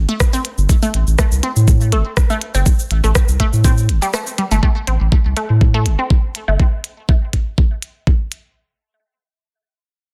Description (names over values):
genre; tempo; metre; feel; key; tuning
minimal techno; 122 BPM; 4/4; swing 53% on 16ths; A minor; A4 = 438 Hz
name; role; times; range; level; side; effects
saturated sub bass; bass; 0.0-6.6 s; G1 to A2; -17 LUFS; equal; tube saturation, sidechain pumping
resonant blip pluck; riff; 0.1-6.6 s; G3 to C4; -25 LUFS; equal; phaser, sidechain pumping, digital delay
electronic kick drum; drums; 0.2-8.2 s; none; -16 LUFS; equal; overdrive, studio ambience
minimal click drum kit; drums; 0.2-8.4 s; hi-hat, rim click, shaker; -25 LUFS; equal; studio ambience, soft clipping on snare
room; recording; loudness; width
digital ambience; dense, heavily limited modern master; -16 LUFS; mono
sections
0.0-4.6 A section; 4.6-8.6 B section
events
drop 0.0-4.6; break 4.1-4.6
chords
0.0 A7(no3); 4.6 Am